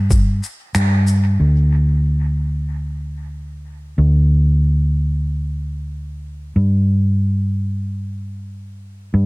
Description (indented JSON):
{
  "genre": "ambient dub",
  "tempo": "93 BPM",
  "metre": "4/4",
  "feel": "swing 54% on 16ths",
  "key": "unclear",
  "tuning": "A4 = 441 Hz",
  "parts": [
    { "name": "hollow-body short-scale fingered electric bass", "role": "bass", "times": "0.0-9.3 s", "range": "D2 to G2", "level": "-16 LUFS", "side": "equal", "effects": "none" },
    { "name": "shaker and finger snaps", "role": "drums", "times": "0.1-1.2 s", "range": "none", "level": "-28 LUFS", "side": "right 1 dB", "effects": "dub echo" }
  ],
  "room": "little or no reverb",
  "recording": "none",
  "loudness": "-15 LUFS",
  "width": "side -26 dB against mid",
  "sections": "0.0-1.4 A section; 1.4-9.3 B section",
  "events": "none",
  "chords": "none"
}